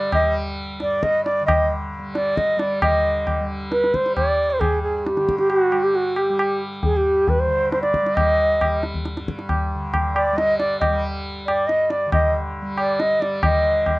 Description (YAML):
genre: indian classical, Hindustani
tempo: 135 BPM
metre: 3/4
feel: straight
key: unclear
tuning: A4 = 440 Hz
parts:
  - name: bright reedy bansuri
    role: melody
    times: 0.0-14.0 s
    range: F#4 to Eb5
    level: -19 LUFS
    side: equal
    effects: none
  - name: tanpura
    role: drone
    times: 0.0-14.0 s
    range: G2 to G3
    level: -30 LUFS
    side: equal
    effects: none
  - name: tabla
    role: percussion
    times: 0.1-14.0 s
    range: none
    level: -23 LUFS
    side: left 1 dB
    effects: none
room: light reverb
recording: worn, warbling old tape, cassette tape, warbly pitch drift, nothing above 10.4 kHz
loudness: -18 LUFS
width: side -21 dB against mid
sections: 0.0-2.8 A section; 2.8-13.4 A section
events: speeding up 0.0-14.0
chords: none